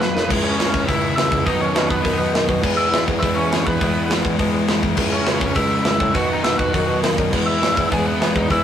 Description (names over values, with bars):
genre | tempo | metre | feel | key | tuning
punk rock | 205 BPM | 4/4 | straight | E major | A4 = 441 Hz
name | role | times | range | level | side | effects
biting lead guitar | melody | 0.0-8.6 s | B3 to G#5 | -22 LUFS | equal | overdrive
overdriven electric guitar | riff | 0.0-8.6 s | B2 to E4 | -25 LUFS | right 4 dB | none
sludgy distorted guitar | riff | 0.0-8.6 s | B2 to E4 | -22 LUFS | left 6 dB | overdrive
warm bassoon | bass | 0.0-8.6 s | C#2 to D#3 | -24 LUFS | right 1 dB | none
tight metal drum kit | drums | 0.0-8.6 s | crash cymbal, hi-hat, kick drum, snare drum | -22 LUFS | right 1 dB | none
room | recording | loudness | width
light reverb | rough rehearsal-room recording, tube saturation | -16 LUFS | side -9 dB against mid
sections
0.3-8.6 A section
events
drum fill 0.0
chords
0.3 C#m; 1.5 B; 2.6 E; 5.0 C#m; 6.1 B; 7.3 E